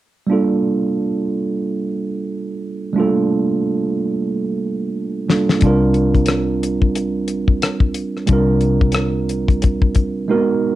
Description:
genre	R&B, neo-soul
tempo	90 BPM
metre	4/4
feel	swing 59% on 16ths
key	G minor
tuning	A4 = 440 Hz
part	mellow tine electric piano	accompaniment	0.3-10.8 s	G3 to Bb4	-18 LUFS	right 3 dB	cassette tape
part	damped 70s drum kit	drums	5.3-10.1 s	hi-hat, kick drum, rim click, snare drum	-16 LUFS	left 2 dB	cassette tape
part	vintage muted fingered electric bass	bass	5.6-10.3 s	C2	-22 LUFS	left 2 dB	none
room	moderate studio reverb, RT60 0.6 s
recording	home recording on cassette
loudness	-16 LUFS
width	side -14 dB against mid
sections	0.3-10.8 A section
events	drum fill 5.0-5.6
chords	0.3 Gm9; 5.6 C7sus4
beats	| 0.28 0.95 1.62 2.29 | 2.95 3.62 4.29 4.95 | 5.62 6.29 6.95 7.62 | 8.29 8.95 9.62 10.29

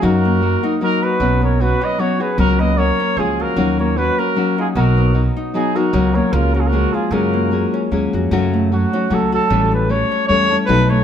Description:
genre	mexican folk, mariachi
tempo	152 BPM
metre	3/4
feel	swing 55% on 8ths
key	F# major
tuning	A4 = 441 Hz
part	mellow trumpet	melody	0.0-11.0 s	F#4 to D#5	-20 LUFS	equal	slapback echo
part	mellow trumpet	second line	0.0-7.9 s	D#4 to B4	-25 LUFS	right 7 dB	none
part	nylon-string guitar	accompaniment	0.0-11.0 s	F#2 to A4	-21 LUFS	left 2 dB	none
part	Celtic harp	arpeggios	0.0-11.0 s	E#3 to F#4	-21 LUFS	left 4 dB	none
part	upright bass	bass	0.0-11.0 s	A1 to F#2	-19 LUFS	right 1 dB	none
room	light reverb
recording	close, detailed microphones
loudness	-14 LUFS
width	side -9 dB against mid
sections	0.0-8.3 A section; 8.3-11.0 B section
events	none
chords	0.0 D#m/F#; 1.2 Bsus2; 2.4 F#/C#; 3.2 C#; 3.6 D#m7; 4.8 B; 5.9 F#/C#; 6.3 C#6; 7.1 F#add9; 8.3 F#m; 9.5 A7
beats	| 0.03 0.42 0.81 | 1.20 1.59 1.99 | 2.38 2.78 3.17 | 3.57 3.97 4.36 | 4.75 5.15 5.54 | 5.93 6.33 6.72 | 7.12 7.51 7.91 | 8.31 8.71 9.11 | 9.51 9.90 10.29 | 10.69

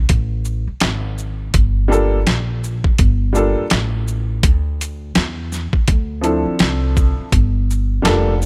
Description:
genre	hip hop, jazz-hop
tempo	83 BPM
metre	4/4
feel	swing 58% on 16ths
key	unclear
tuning	A4 = 440 Hz
part	upright bass	bass	0.0-8.5 s	F1 to E2	-21 LUFS	equal	none
part	boom bap sampler-style drum kit	drums	0.1-8.5 s	hi-hat, kick drum, shaker, snare drum	-19 LUFS	equal	none
part	dark baby grand piano	accompaniment	1.9-8.3 s	F3 to A4	-21 LUFS	equal	none
room	little or no reverb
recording	none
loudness	-18 LUFS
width	mono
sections	0.0-8.5 A section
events	none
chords	0.0 N.C.; 1.5 Gm9; 4.4 Dm9; 7.3 Gm9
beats	0.10 0.82 | 1.54 2.26 2.99 3.71 | 4.43 5.16 5.88 6.60 | 7.32 8.05

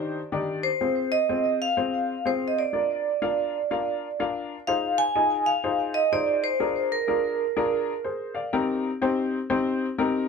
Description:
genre	soul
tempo	124 BPM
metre	4/4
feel	swing 63% on 8ths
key	unclear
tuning	A4 = 440 Hz
part	warm upright piano	accompaniment	0.0-10.3 s	Eb3 to F5	-27 LUFS	left 4 dB	none
part	vibraphone with medium hard mallets	melody	0.6-7.8 s	Bb4 to Ab5	-24 LUFS	right 2 dB	tape echo
room	moderate booth ambience, RT60 0.2 s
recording	none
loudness	-23 LUFS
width	side -5 dB against mid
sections	0.0-4.7 A section; 4.7-10.3 B section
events	none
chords	0.0 Cmadd9/Eb; 0.8 Fm; 2.7 Bb; 4.7 Fm7; 6.6 Bb7; 8.5 Cm7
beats	0.32 | 0.80 1.29 1.77 2.26 | 2.74 3.22 3.71 4.19 | 4.68 5.16 5.64 6.13 | 6.61 7.09 7.57 8.06 | 8.54 9.02 9.51 9.99

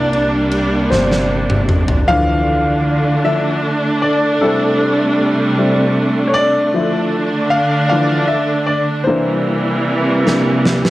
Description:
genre	six-eight pop ballad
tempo	51 BPM (dotted quarters)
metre	6/8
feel	straight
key	D minor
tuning	A4 = 440 Hz
part	warm baby grand piano	accompaniment	0.0-10.9 s	E3 to F5	-18 LUFS	left 2 dB	cassette tape
part	rich studio string section	sustained chords	0.0-10.9 s	C3 to D4	-15 LUFS	right 1 dB	cassette tape
part	upright bass	bass	0.0-2.0 s	G1 to C2	-22 LUFS	equal	none
part	huge arena drum kit	drums	0.1-2.1, 10.3-10.9 s	ride cymbal, snare drum, toms	-19 LUFS	equal	cassette tape
room	moderate booth ambience, RT60 0.2 s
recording	home recording on cassette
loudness	-13 LUFS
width	side -16 dB against mid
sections	0.0-2.1 A section; 2.1-10.9 A section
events	drum fill 0.9-2.1, 10.3-10.9; grand piano solo 2.1-10.9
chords	0.0 C7; 2.1 Dmadd9; 4.4 Am7/C; 6.8 Dmadd9; 9.1 C7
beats	0.91 | 2.08 3.25 | 4.41 5.58 | 6.75 7.92 | 9.09 10.26

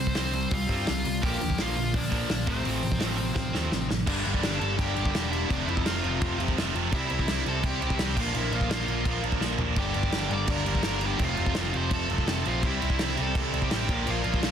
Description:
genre	punk rock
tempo	168 BPM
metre	4/4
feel	straight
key	G dorian from 4.1 s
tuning	A4 = 440 Hz
part	high-gain lead guitar	melody	0.0-14.5 s	C4 to D6	-33 LUFS	equal	distortion
part	distorted electric guitar	riff	0.0-14.5 s	F2 to C4	-34 LUFS	left 13 dB	distortion
part	distorted electric guitar	riff	0.0-14.5 s	F2 to E4	-32 LUFS	right 13 dB	overdrive
part	tight distorted guitar	riff	0.0-14.5 s	F2 to C4	-35 LUFS	equal	distortion
part	overdriven picked electric bass	bass	0.0-14.5 s	E1 to G2	-31 LUFS	equal	none
part	loose indie drum kit	drums	0.1-14.5 s	crash cymbal, hi-hat, kick drum, snare drum, toms	-30 LUFS	equal	soft clipping on kick
room	little or no reverb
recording	dense, heavily limited modern master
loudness	-24 LUFS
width	side -8 dB against mid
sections	0.0-4.1 A section; 4.1-14.5 B section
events	drum fill 3.4-4.1, 9.4-9.8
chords	0.0 C5; 1.2 Bb; 2.5 F/A; 4.1 Gm; 5.5 F; 6.9 C; 8.2 Bb; 9.8 Gm; 11.2 F; 12.6 C; 13.9 Bb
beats	0.16 0.52 0.87 | 1.23 1.59 1.94 2.30 | 2.66 3.02 3.37 3.73 | 4.08 4.44 4.80 5.15 | 5.51 5.86 6.22 6.57 | 6.93 7.28 7.64 8.00 | 8.35 8.71 9.06 9.42 | 9.78 10.13 10.49 10.85 | 11.20 11.56 11.92 12.28 | 12.64 12.99 13.35 13.71 | 14.07 14.43

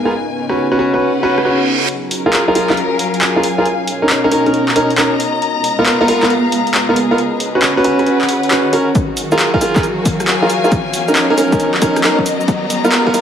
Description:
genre	UK garage, two-step garage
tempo	136 BPM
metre	4/4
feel	swing 66% on 16ths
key	unclear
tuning	A4 = 438 Hz
part	soft string machine	sustained chords	0.0-13.2 s	G#2 to E#5	-23 LUFS	left 1 dB	ensemble chorus, sidechain pumping
part	muted studio string section	texture	0.0-13.2 s	F#3 to A#5	-20 LUFS	left 2 dB	sidechain pumping
part	clear concert grand piano	stabs	0.1-13.2 s	B3 to B4	-15 LUFS	right 1 dB	low-pass filter, ping-pong delay
part	punchy analog drum machine	drums	0.5-13.2 s	handclaps, hi-hat, rim click, shaker	-18 LUFS	equal	overdrive
part	reverse cymbal and riser	sound effects	1.2-13.2 s	none	-25 LUFS	right 1 dB	none
part	electronic kick drum	drums	9.0-13.1 s	none	-18 LUFS	left 1 dB	overdrive
room	moderate plate reverb, RT60 1.4 s, digital ambience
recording	vinyl crackle, high-pass filter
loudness	-12 LUFS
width	side -8 dB against mid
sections	0.0-1.9 A section; 1.9-13.2 B section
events	reverse cymbal 1.2-1.9; build-up 1.9-13.2; riser 1.9-13.2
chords	0.1 C#7sus4; 1.9 F#maj9; 3.7 Bmaj9; 5.4 G#m69; 7.2 C#7sus4; 9.0 F#maj9; 10.7 Bmaj9; 12.5 G#m69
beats	| 0.13 0.57 1.01 1.45 | 1.89 2.33 2.77 3.22 | 3.66 4.10 4.54 4.98 | 5.42 5.86 6.30 6.75 | 7.19 7.63 8.07 8.51 | 8.95 9.39 9.83 10.28 | 10.72 11.16 11.60 12.04 | 12.48 12.92

